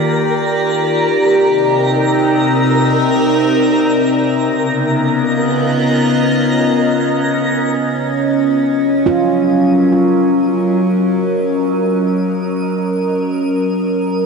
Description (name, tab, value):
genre	ambient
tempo	free time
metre	none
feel	none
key	unclear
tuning	A4 = 440 Hz
part	evolving wavetable pad	sustained chords	0.0-14.3 s	C3 to Eb5	-13 LUFS	equal	phaser, built-in reverb
part	twinkling granular texture	texture	0.0-14.3 s	Bb4 to Eb7	-22 LUFS	right 1 dB	built-in reverb, lush chorus
part	handpan	arpeggios	9.1-11.5 s	F4	-19 LUFS	right 5 dB	analog delay
room	wet huge ambient reverb, RT60 8.0 s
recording	dreamy mix soaked in reverb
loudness	-12 LUFS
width	side -4 dB against mid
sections	0.0-7.8 A section; 7.8-14.3 B section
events	fade-in on synth texture 7.8-14.3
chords	0.0 Ebmaj7; 0.9 Cm7; 4.4 Db7; 7.8 Gb